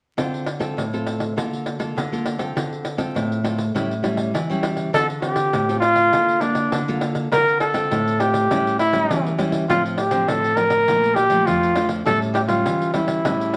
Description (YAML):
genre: samba and choro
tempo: 101 BPM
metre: 4/4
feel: straight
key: D minor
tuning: A4 = 437 Hz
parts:
  - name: nylon-string guitar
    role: accompaniment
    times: 0.2-13.6 s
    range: F2 to A4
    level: -26 LUFS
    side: equal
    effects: none
  - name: pandeiro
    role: percussion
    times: 0.2-13.6 s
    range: none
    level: -29 LUFS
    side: equal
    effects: none
  - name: dark trumpet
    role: melody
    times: 4.9-13.6 s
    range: D4 to Bb4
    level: -21 LUFS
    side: equal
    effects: none
room: wet studio reverb, RT60 0.8 s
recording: vinyl crackle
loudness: -21 LUFS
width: mono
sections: 0.2-4.9 A section; 4.9-13.6 B section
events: none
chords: 0.2 Dm7; 1.4 Bbmaj7/D; 2.6 Dm7; 3.8 A7; 4.9 Dm7; 6.1 Bbmaj7/D; 7.3 Dm7; 8.5 A7; 9.7 Dm7/A; 10.9 Bbmaj7; 12.1 A7